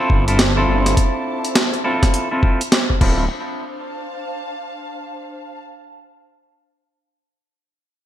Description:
glitch hop; 103 BPM; 4/4; swing 62% on 16ths; D minor; A4 = 441 Hz
clean electric guitar; stabs; 0.0-3.2 s; C4 to A4; -21 LUFS; equal; sidechain pumping, low-pass filter, digital delay
dark studio string section; texture; 0.0-5.6 s; D4 to A5; -29 LUFS; equal; sidechain pumping
phased detuned saw bass; bass; 0.1-3.3 s; D1 to G1; -19 LUFS; equal; phaser, tube saturation
electronic kick drum; drums; 0.1-3.2 s; -16 LUFS; equal
boom bap sampler-style drum kit; drums; 0.3-3.2 s; crash cymbal, hi-hat, snare drum; -19 LUFS; equal; gated reverb
light reverb; bright 1980s-style digital production; -15 LUFS; side -12 dB against mid
0.0-3.3 A section; 3.3-5.6 B section
fade-out on string section 0.0-3.3; filter sweep on clean electric guitar 0.0-3.3
0.0 Dm7
0.39 | 0.97 1.56 2.14 2.72 | 3.30 3.89 4.47 5.05

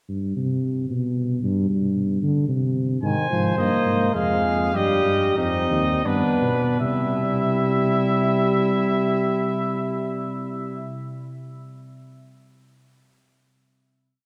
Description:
classical, imitative canzona for brass ensemble; 76-113 BPM; 3/4; straight; A4 = 438 Hz
dark tuba; bass; 0.1-11.0 s; Eb2 to D3; -26 LUFS; equal
warm trumpet; melody; 3.0-11.0 s; B4 to Ab5; -29 LUFS; equal
mellow trumpet; second line; 3.0-11.0 s; D4 to C5; -31 LUFS; equal
warm euphonium; accompaniment; 3.0-11.0 s; Eb3 to C4; -26 LUFS; equal
wet church reverb, RT60 3.9 s; dark, warm production; -22 LUFS; mono
0.0-6.8 exposition; 6.8-11.5 final chord
slowing down 2.2-6.8
0.0 C5; 0.9 N.C.; 1.4 G5; 2.5 N.C.; 3.0 Ab; 4.1 Fm; 4.7 Cm/G; 6.1 G; 6.8 C
0.36 0.90 | 1.43 1.96 2.49 | 3.03 3.58 4.14 | 4.74 5.38 6.06 | 6.81 7.59 8.37 | 9.15 9.94 10.72

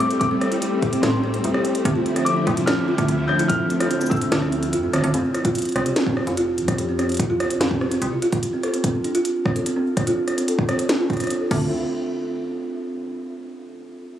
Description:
IDM; 146 BPM; 4/4; straight; A4 = 441 Hz
felt-muted upright piano; melody; 0.0-4.9 s; C6 to G6; -27 LUFS; left 2 dB; ping-pong delay
soft string machine; sustained chords; 0.0-5.1, 11.5-11.7 s; D3 to F4; -27 LUFS; equal; ensemble chorus, vintage 12-bit sampler grit
kalimba; arpeggios; 0.0-11.7 s; C4 to A4; -23 LUFS; equal; low-pass filter, ping-pong delay
metallic FM bass; bass; 0.0-8.1, 11.5-11.7 s; D1 to F2; -26 LUFS; right 1 dB
industrial drum kit; drums; 0.0-11.6 s; cabasa, crash cymbal, hi-hat, rim click, snare drum; -26 LUFS; right 1 dB
electronic kick drum; drums; 0.2-11.6 s; -25 LUFS; equal
light reverb, digital ambience; recorded on a phone in the room, club reverb; -19 LUFS; side -10 dB against mid
0.0-5.1 A section; 5.1-11.7 B section; 11.7-13.4 C section
kick drops out 4.7-5.1; filter sweep on kalimba 5.1-11.7
0.0 Am7; 1.9 Dm9; 5.1 F5; 8.4 Csus24; 11.5 Dm9; 11.7 N.C.
| 0.21 0.62 1.03 1.44 | 1.85 2.26 2.67 3.08 | 3.50 3.91 4.32 4.73 | 5.14 5.55 5.96 6.37 | 6.78 7.20 7.61 8.02 | 8.43 8.84 9.25 9.66 | 10.07 10.48 10.89 11.30

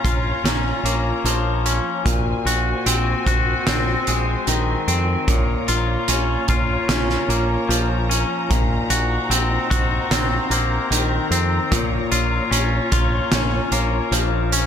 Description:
post-rock; 75 BPM; 4/4; straight; Bb minor; A4 = 439 Hz
warm symphonic string section; sustained chords; 0.0-14.7 s; Eb4 to Bb5; -28 LUFS; right 1 dB
twangy electric guitar; arpeggios; 0.0-14.7 s; Bb2 to Gb4; -22 LUFS; left 4 dB; analog delay, slapback echo
growling fingered electric bass; bass; 0.0-14.7 s; Bb1 to F2; -22 LUFS; right 1 dB; overdrive
loose indie drum kit; drums; 0.0-14.7 s; hi-hat, kick drum, snare drum; -23 LUFS; right 1 dB
moderate lush hall reverb, RT60 2.9 s; big arena sound; -17 LUFS; side -8 dB against mid
0.0-14.7 A section
0.0 Bbm; 2.1 Ab7/Bb; 5.3 Bbm; 8.5 Cm7b5/Bb; 11.7 Bbm
0.45 1.25 | 2.06 2.86 3.67 4.47 | 5.28 6.08 6.89 7.69 | 8.50 9.30 10.11 10.91 | 11.71 12.52 13.32 14.13

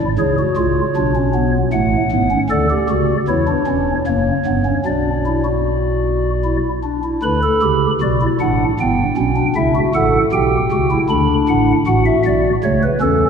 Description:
classical, baroque-style 3-part fugue for pipe organ; 78 BPM; 3/4; straight; B minor; A4 = 440 Hz
pipe organ, stopped flute; solo; 0.0-13.3 s; E1 to B5; -14 LUFS; equal
wet church reverb, RT60 3.2 s; minimal, uncompressed stereo recording; -14 LUFS; side -6 dB against mid
0.0-7.2 A section; 7.2-13.3 B section
0.2 C#; 1.7 F#m/A; 2.5 Dmaj7; 3.3 C#m/E; 4.1 F#; 4.9 Bm; 8.8 G; 9.6 C#dim; 11.1 Bm/D; 11.9 F#m/A
| 0.20 0.96 1.73 | 2.50 3.28 4.06 | 4.85 5.65 6.44 | 7.23 8.02 8.79 | 9.56 10.33 11.10 | 11.87 12.63

